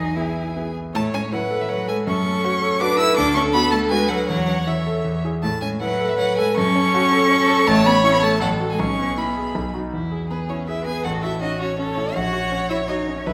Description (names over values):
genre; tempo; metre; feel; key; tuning
quick classical-period movement for piano quartet; 161 BPM; 3/4; rubato; A major; A4 = 439 Hz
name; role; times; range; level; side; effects
clear violin; melody; 0.0-13.3 s; B4 to E6; -26 LUFS; equal; none
rich cello; second line; 0.0-13.3 s; E3 to G#4; -27 LUFS; equal; none
rich violin; second line; 0.0-13.3 s; E4 to C#5; -28 LUFS; equal; none
clear concert grand piano; accompaniment; 0.0-13.3 s; A1 to C#5; -25 LUFS; equal; none
room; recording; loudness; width
wet recital hall reverb, RT60 1.5 s; none; -20 LUFS; mono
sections
0.9-9.9 A section; 9.9-13.3 B section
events
none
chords
0.0 E; 0.9 A; 2.1 F#m; 3.2 D; 4.3 A/E; 5.0 E; 5.4 A; 6.6 F#m; 7.7 A; 8.4 F#m/A; 8.8 E/B; 9.6 B; 9.9 E; 11.0 F#m/A; 12.2 F#7/A#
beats
0.15 0.55 | 0.95 1.32 1.69 | 2.07 2.44 2.80 | 3.17 3.53 3.90 | 4.28 4.66 5.05 | 5.43 5.81 6.18 | 6.57 6.94 7.31 | 7.67 8.04 8.41 | 8.79 9.18 9.56 | 9.94 10.31 10.68 | 11.05 11.42 11.79 | 12.15 12.52 12.89 | 13.27